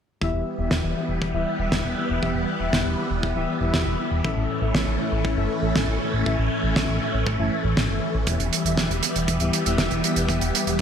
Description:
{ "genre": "italo disco", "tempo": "119 BPM", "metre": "4/4", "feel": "straight", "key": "E dorian", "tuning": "A4 = 440 Hz", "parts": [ { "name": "phased string machine", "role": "sustained chords", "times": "0.2-10.8 s", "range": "E3 to C#4", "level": "-26 LUFS", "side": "equal", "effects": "ensemble chorus, phaser" }, { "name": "analog synth brass", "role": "stabs", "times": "0.2-10.8 s", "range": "A2 to E5", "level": "-28 LUFS", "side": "left 3 dB", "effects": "chorus, ping-pong delay" }, { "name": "chorused synth bass", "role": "bass", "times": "0.2-10.8 s", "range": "D1 to A1", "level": "-26 LUFS", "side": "equal", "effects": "none" }, { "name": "kick drum", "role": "drums", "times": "0.2-10.8 s", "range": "none", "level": "-29 LUFS", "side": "equal", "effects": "high-pass filter on kick, studio reverb, high-pass filter on snare, high-pass filter on room" }, { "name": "damped 70s drum kit", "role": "drums", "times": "0.7-10.8 s", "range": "hi-hat, snare drum", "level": "-27 LUFS", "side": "right 2 dB", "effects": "studio reverb, gated reverb" } ], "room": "moderate lush hall reverb, RT60 2.4 s", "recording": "bright 1980s-style digital production", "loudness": "-21 LUFS", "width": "side -8 dB against mid", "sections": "0.2-10.8 A section", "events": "filter sweep on analog synth bass 0.2-10.8", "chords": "0.2 Em; 4.2 A; 8.3 Em" }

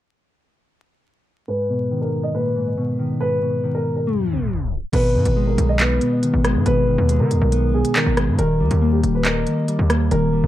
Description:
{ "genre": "hip hop, drill", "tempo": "139 BPM", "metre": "4/4", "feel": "half-time", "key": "G# harmonic minor", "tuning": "A4 = 438 Hz", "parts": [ { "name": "dark concert grand piano", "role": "melody", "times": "1.5-10.5 s", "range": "G4 to D#5", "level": "-24 LUFS", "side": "equal", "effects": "low-pass filter, tape echo" }, { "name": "mellow electric guitar", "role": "accompaniment", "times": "1.5-10.5 s", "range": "G#2 to D#5", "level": "-20 LUFS", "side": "left 1 dB", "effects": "wide subtle chorus, low-pass filter" }, { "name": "reverse cymbal", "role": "sound effects", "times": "4.2-4.9 s", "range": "none", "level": "-46 LUFS", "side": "left 2 dB", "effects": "none" }, { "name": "distorted 808-style bass", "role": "bass", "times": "4.9-10.5 s", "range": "D#1 to D#3", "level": "-19 LUFS", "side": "equal", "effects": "distortion" }, { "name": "drill drum kit", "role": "drums", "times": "4.9-10.2 s", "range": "crash cymbal, handclaps, hi-hat, rim click", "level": "-24 LUFS", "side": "equal", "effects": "none" } ], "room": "light reverb, digital ambience", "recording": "dark, warm production, vinyl crackle, tape stop", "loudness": "-17 LUFS", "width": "side -13 dB against mid", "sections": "1.5-4.9 A section; 4.9-10.5 B section", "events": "filter sweep 1.5-4.9; tape stop 4.1-4.9; reverse cymbal 4.2-4.9", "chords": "1.5 G#madd9; 4.9 G#m; 8.4 D#" }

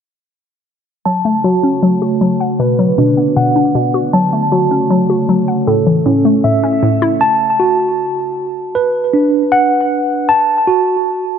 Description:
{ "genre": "hip hop", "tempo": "156 BPM", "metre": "4/4", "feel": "half-time", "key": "F# minor", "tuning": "A4 = 439 Hz", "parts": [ { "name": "hollow square pluck", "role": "accompaniment", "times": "1.1-7.2 s", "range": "A2 to F#5", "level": "-15 LUFS", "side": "left 3 dB", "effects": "chorus, low-pass filter" }, { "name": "glassy FM pad", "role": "sustained chords", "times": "1.1-7.2 s", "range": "C#3 to D5", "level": "-19 LUFS", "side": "left 1 dB", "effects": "ensemble chorus, built-in reverb" }, { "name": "mellow tine electric piano", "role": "arpeggios", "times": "1.1-11.4 s", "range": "C#4 to A5", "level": "-13 LUFS", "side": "right 2 dB", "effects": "medium stereo tremolo, low-pass filter, digital delay" } ], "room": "moderate lush hall reverb, RT60 2.7 s", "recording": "dark, warm production, low-pass filter", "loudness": "-11 LUFS", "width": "side -7 dB against mid", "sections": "1.1-7.2 A section; 7.2-11.4 B section", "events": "filter sweep 1.1-7.2", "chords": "1.1 F#m; 2.6 Bm; 4.1 F#m; 5.7 A; 7.2 F#m; 8.8 Bm; 10.3 F#m" }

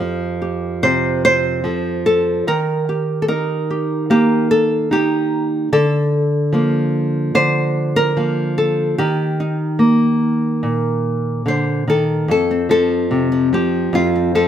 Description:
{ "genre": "folk, solo fingerstyle acoustic guitar", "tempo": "73 BPM", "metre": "4/4", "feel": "straight", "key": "F mixolydian", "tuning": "A4 = 440 Hz", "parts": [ { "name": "nylon-string guitar", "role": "solo", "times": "0.0-14.5 s", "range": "F2 to C5", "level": "-15 LUFS", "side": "equal", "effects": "none" } ], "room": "moderate stone room reverb, RT60 1.3 s", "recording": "band playing live in one room", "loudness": "-15 LUFS", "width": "side -10 dB against mid", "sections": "0.0-12.3 A section; 12.3-14.5 B section", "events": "none", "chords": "0.0 Fadd9; 2.5 Eb; 5.7 Bb/D; 9.0 Eb; 12.3 F" }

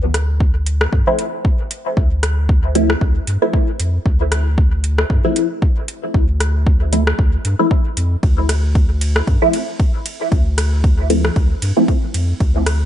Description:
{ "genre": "dub techno", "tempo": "115 BPM", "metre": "4/4", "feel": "swing 56% on 16ths", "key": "D minor", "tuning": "A4 = 438 Hz", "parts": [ { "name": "soft dub sub bass", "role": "bass", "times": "0.0-12.9 s", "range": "D2 to G2", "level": "-17 LUFS", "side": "equal", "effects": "sidechain pumping" }, { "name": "deep house drum kit", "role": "drums", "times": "0.1-12.8 s", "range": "hi-hat, ride cymbal, rim click", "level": "-23 LUFS", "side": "equal", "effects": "overdrive, dub echo" }, { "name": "electronic kick drum", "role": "drums", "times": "0.4-12.5 s", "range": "none", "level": "-15 LUFS", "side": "equal", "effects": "overdrive" }, { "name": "filtered dub chord stab", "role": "stabs", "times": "1.1-12.0 s", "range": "F3 to E4", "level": "-20 LUFS", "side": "equal", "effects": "phaser, sidechain pumping, dub echo" } ], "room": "digital ambience", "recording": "nothing above 10.8 kHz", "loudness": "-14 LUFS", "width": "side -11 dB against mid", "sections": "0.0-12.9 A section", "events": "none", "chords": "0.0 Dm9" }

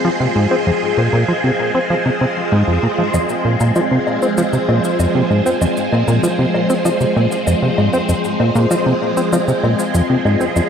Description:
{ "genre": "ambient, sequencer-driven space music", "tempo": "97 BPM", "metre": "4/4", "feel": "straight", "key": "F minor", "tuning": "A4 = 440 Hz", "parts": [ { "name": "phased string machine", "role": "sustained chords", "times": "0.0-10.7 s", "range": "F3 to C5", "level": "-17 LUFS", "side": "equal", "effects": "ensemble chorus, phaser" }, { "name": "plucky analog bass", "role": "riff", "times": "0.0-10.6 s", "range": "F2 to C4", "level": "-16 LUFS", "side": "equal", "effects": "ping-pong delay" }, { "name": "shaker and woodblock", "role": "percussion", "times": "3.1-10.7 s", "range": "none", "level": "-24 LUFS", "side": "left 1 dB", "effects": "ping-pong delay" } ], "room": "moderate plate reverb, RT60 3.0 s", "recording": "none", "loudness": "-14 LUFS", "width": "side -7 dB against mid", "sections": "0.0-10.7 A section", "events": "none", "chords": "0.0 Fm" }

